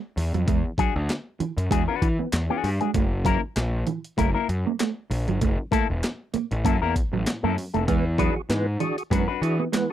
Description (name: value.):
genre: funk.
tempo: 97 BPM.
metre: 4/4.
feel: swing 56% on 16ths.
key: unclear.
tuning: A4 = 439 Hz.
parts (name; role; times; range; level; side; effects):
mellow electric guitar; riff; 0.2-9.8 s; E3 to B3; -27 LUFS; right 8 dB; none.
fuzz picked electric bass; bass; 0.2-9.6 s; E1 to E3; -26 LUFS; equal; overdrive.
breakbeat sampler-style drum kit; drums; 0.2-9.9 s; handclaps, hi-hat, kick drum, snare drum; -27 LUFS; equal; none.
electric guitar with an envelope filter; accompaniment; 0.8-9.4 s; A#3 to B4; -25 LUFS; left 10 dB; none.
percussive tonewheel organ; stabs; 7.9-9.9 s; E3 to G#4; -27 LUFS; right 2 dB; overdrive, chorus vibrato, slow rotary speaker.
room: little or no reverb.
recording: dry, close 1970s-style studio recording.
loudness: -22 LUFS.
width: side -11 dB against mid.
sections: 0.0-9.9 A section.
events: none.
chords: 0.0 E9; 2.9 F#7#9; 7.9 E9.